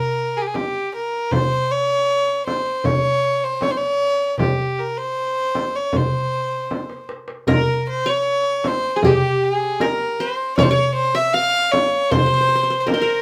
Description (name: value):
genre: Arabic maqam ensemble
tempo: 78 BPM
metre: 4/4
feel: straight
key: C maqam hijaz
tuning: A4 = 441 Hz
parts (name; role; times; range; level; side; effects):
- warm violin; melody; 0.0-13.2 s; G4 to F5; -22 LUFS; equal; none
- darbuka; percussion; 0.2-13.1 s; none; -27 LUFS; equal; none
- frame drum; percussion; 0.6-13.1 s; none; -25 LUFS; equal; none
- qanun; second line; 7.5-13.2 s; G4 to F5; -26 LUFS; equal; none
room: moderate studio ambience, RT60 0.5 s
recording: none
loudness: -20 LUFS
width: mono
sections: 0.0-7.5 A section; 7.5-13.2 B section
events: drum fill 6.7-7.5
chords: none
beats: 0.54 | 1.31 2.08 2.85 3.62 | 4.39 5.17 5.94 6.71 | 7.48 8.25 9.02 9.79 | 10.56 11.34 12.11 12.88